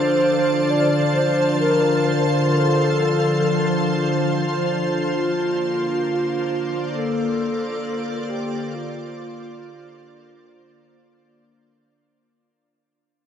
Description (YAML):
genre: ambient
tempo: 67 BPM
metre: 4/4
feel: straight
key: unclear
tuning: A4 = 440 Hz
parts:
  - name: breathy wooden-headed alto flute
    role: melody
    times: 0.0-11.4 s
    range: F4 to D5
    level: -23 LUFS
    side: equal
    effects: tape echo
  - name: soft additive organ-like pad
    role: sustained chords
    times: 0.0-12.3 s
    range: F3 to A5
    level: -23 LUFS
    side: left 1 dB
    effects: ensemble chorus, built-in reverb
  - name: analog drone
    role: drone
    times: 0.0-12.4 s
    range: D3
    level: -24 LUFS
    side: equal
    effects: chorus
room: wet huge ambient reverb, RT60 7.7 s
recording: dark, warm production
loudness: -18 LUFS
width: side -8 dB against mid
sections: 0.0-12.3 A section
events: fade-out 2.8-12.3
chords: 0.0 F; 5.2 Bbadd9